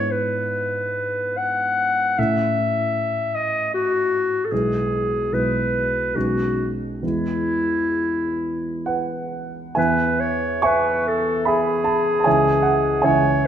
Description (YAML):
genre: classical, romantic duo for clarinet and grand piano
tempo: 60-79 BPM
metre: 3/4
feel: rubato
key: E major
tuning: A4 = 442 Hz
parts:
  - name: warm clarinet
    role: melody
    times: 0.0-13.5 s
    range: E4 to F#5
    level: -21 LUFS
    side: left 1 dB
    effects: none
  - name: dark concert grand piano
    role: accompaniment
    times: 0.0-13.5 s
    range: B1 to C#6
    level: -22 LUFS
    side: right 2 dB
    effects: none
room: wet recital hall reverb, RT60 1.8 s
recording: none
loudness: -19 LUFS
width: side -9 dB against mid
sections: 0.0-9.8 A section; 9.8-13.5 A section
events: none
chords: 0.0 E7/G#; 2.2 A; 4.5 E/B; 6.2 B69; 7.0 E; 12.3 C#m